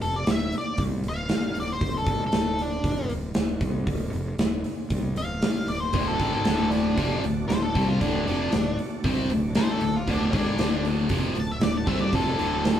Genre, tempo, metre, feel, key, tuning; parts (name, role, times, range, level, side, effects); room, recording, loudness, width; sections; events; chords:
blues rock power trio and southern rock; 116 BPM; 4/4; straight; D major; A4 = 440 Hz
octave-fuzz lead guitar; melody; 0.0-12.8 s; D4 to A5; -29 LUFS; left 1 dB; distortion
fuzz fingered electric bass; bass; 0.0-12.8 s; D1 to C2; -31 LUFS; equal; overdrive
big rock drum kit; drums; 0.0-12.8 s; hi-hat, kick drum, snare drum; -26 LUFS; equal
bright tonewheel organ; sustained chords; 5.9-12.8 s; A3 to D5; -37 LUFS; right 3 dB
cranked stack guitar; riff; 5.9-12.8 s; D2 to C4; -26 LUFS; left 1 dB; overdrive
moderate studio reverb, RT60 0.5 s; band playing live in one room; -23 LUFS; side -10 dB against mid
0.0-12.8 A section
0.0 D